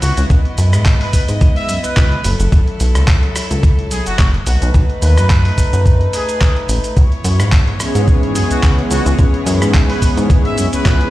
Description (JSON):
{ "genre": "nu-disco, nu disco", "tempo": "108 BPM", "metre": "4/4", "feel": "swing 55% on 16ths", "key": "C# minor", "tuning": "A4 = 440 Hz", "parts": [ { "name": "brilliant trumpet section", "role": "melody", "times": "0.0-11.1 s", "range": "F#4 to E5", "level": "-24 LUFS", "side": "left 1 dB", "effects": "tape echo" }, { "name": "rich chamber string section", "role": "sustained chords", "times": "0.0-11.1 s", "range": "F#3 to D#5", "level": "-24 LUFS", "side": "left 1 dB", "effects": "sidechain pumping" }, { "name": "chorused synth bass", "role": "bass", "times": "0.0-11.1 s", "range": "F#1 to G#2", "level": "-15 LUFS", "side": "equal", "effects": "sidechain pumping" }, { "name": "dusty soul sampler-style drum kit", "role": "drums", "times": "0.0-11.1 s", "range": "cabasa, handclaps, hi-hat, rim click", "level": "-23 LUFS", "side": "equal", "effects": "none" }, { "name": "electronic kick drum", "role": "drums", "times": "0.3-11.0 s", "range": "none", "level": "-12 LUFS", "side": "equal", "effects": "none" }, { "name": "warm analog pad", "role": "accompaniment", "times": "7.8-11.1 s", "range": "E3 to C#5", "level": "-18 LUFS", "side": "equal", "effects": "chorus, sidechain pumping" } ], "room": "digital ambience", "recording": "played on a big sound system in a bare room, stone room reverb", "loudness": "-11 LUFS", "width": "side -16 dB against mid", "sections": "0.0-11.1 A section", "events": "none", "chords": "0.0 C#m7; 2.2 F#m7; 4.5 B7; 7.0 C#m7" }